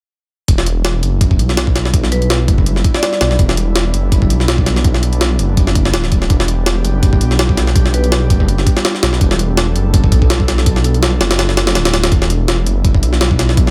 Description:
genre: drum and bass, jungle.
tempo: 165 BPM.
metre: 4/4.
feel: swing 55% on 16ths.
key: E minor.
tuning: A4 = 440 Hz.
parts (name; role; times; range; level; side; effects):
airy breathy pad; sustained chords; 0.5-13.7 s; G3 to A4; -26 LUFS; equal; chorus.
detuned saw bass; bass; 0.5-13.7 s; D1 to B1; -17 LUFS; equal; none.
jungle sampler-style drum kit; drums; 0.5-13.7 s; hi-hat, kick drum, snare drum; -16 LUFS; equal; studio reverb.
vibraphone with medium hard mallets; melody; 2.1-3.3, 7.9-8.2 s; B4 to D5; -26 LUFS; equal; dub echo.
room: digital ambience.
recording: none.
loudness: -14 LUFS.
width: mono.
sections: 0.5-13.7 A section.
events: none.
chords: 0.5 Em7; 6.3 G/E; 12.1 Em7.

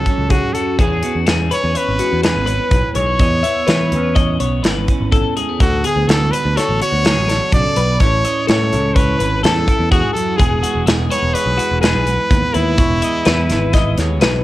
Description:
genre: math rock and midwest emo.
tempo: 125 BPM.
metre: 5/4.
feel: straight.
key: unclear.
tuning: A4 = 440 Hz.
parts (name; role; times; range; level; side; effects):
brilliant trumpet; melody; 0.0-14.0 s; E4 to D5; -19 LUFS; equal; cassette tape.
twelve-string electric guitar; accompaniment; 0.0-14.4 s; E2 to A4; -23 LUFS; right 6 dB; warbly pitch drift, cassette tape.
twelve-string electric guitar; arpeggios; 0.0-14.4 s; F#4 to E5; -22 LUFS; left 7 dB; spring reverb, cassette tape.
picked electric bass; bass; 0.0-14.4 s; E1 to E3; -19 LUFS; equal; none.
modern studio drum kit; drums; 0.1-14.3 s; hi-hat, kick drum, snare drum; -17 LUFS; equal; cassette tape.
room: studio ambience.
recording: home recording on cassette.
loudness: -13 LUFS.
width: side -15 dB against mid.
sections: 0.0-14.4 A section.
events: none.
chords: 0.0 F#madd9; 0.8 C#m7; 5.6 D6; 8.0 Amaj7; 10.4 Emaj7.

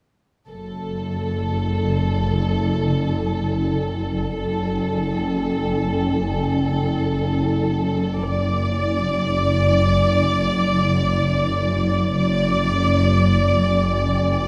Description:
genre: cinematic.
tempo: free time.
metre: none.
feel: none.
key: F# minor.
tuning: A4 = 439 Hz.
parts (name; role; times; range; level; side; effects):
warm symphonic violin section; melody; 0.5-14.5 s; A4 to D5; -26 LUFS; equal; none.
warm studio cello section; bass; 0.5-14.5 s; F#2; -26 LUFS; equal; none.
warm symphonic double bass section; bass; 0.5-14.5 s; F#1; -27 LUFS; equal; none.
swarming drone; drone; 1.4-14.5 s; F#1; -28 LUFS; equal; built-in reverb.
room: wet scoring stage reverb, RT60 1.5 s.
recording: none.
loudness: -20 LUFS.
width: mono.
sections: 0.5-14.5 A section.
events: none.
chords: 0.5 F#m.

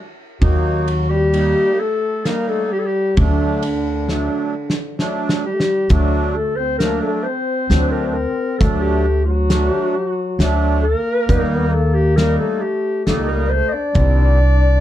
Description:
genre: klezmer.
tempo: 67 BPM.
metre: 3/4.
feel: straight.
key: D phrygian dominant.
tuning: A4 = 435 Hz.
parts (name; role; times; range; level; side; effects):
dark clarinet; melody; 0.4-14.8 s; D4 to Eb5; -20 LUFS; equal; plate reverb.
trombone with cup mute; second line; 0.4-14.8 s; D3 to D4; -24 LUFS; left 5 dB; none.
accordion; accompaniment; 0.4-14.4 s; Eb3 to Eb4; -23 LUFS; right 2 dB; light tremolo tuning.
upright bass; bass; 0.4-14.8 s; C2 to Eb2; -17 LUFS; equal; none.
loose indie drum kit; drums; 0.4-14.2 s; hi-hat, kick drum, ride cymbal, snare drum; -22 LUFS; equal; none.
room: light reverb.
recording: dark, warm production.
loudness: -15 LUFS.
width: side -12 dB against mid.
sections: 0.0-5.9 A section; 5.9-14.8 B section.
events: speeding up 0.0-14.8; drum fill 4.1-5.9.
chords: 0.4 Eb; 3.2 D; 11.3 Eb; 14.0 Cm.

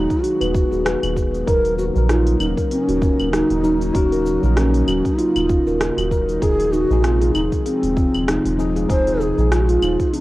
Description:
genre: organic downtempo.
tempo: 97 BPM.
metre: 4/4.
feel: swing 56% on 16ths.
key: unclear.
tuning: A4 = 442 Hz.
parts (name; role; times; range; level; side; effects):
mellow hollow bass bansuri; melody; 0.0-10.2 s; C4 to C5; -20 LUFS; equal; tape echo.
tine electric piano; accompaniment; 0.0-10.2 s; F3 to Bb4; -28 LUFS; left 6 dB; sidechain pumping, cassette tape, tape echo.
airy breathy pad; sustained chords; 0.0-10.2 s; C3 to Gb4; -28 LUFS; equal; chorus, sidechain pumping, cassette tape.
steel tongue drum; arpeggios; 0.0-10.2 s; C4 to Cb5; -23 LUFS; equal; cassette tape, tape echo.
round analog bass; bass; 0.0-10.0 s; Eb1 to Bb1; -21 LUFS; equal; none.
afro-pop drum kit; drums; 0.1-10.2 s; claves, hi-hat, rim click, shaker; -27 LUFS; equal; cassette tape.
electronic kick drum; drums; 0.1-10.1 s; none; -21 LUFS; equal; cassette tape.
room: little or no reverb.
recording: home recording on cassette.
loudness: -16 LUFS.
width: side -17 dB against mid.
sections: 0.0-10.2 A section.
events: none.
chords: 0.0 Abm7/Eb; 1.5 Gb6/Eb; 6.4 Fm7/Eb.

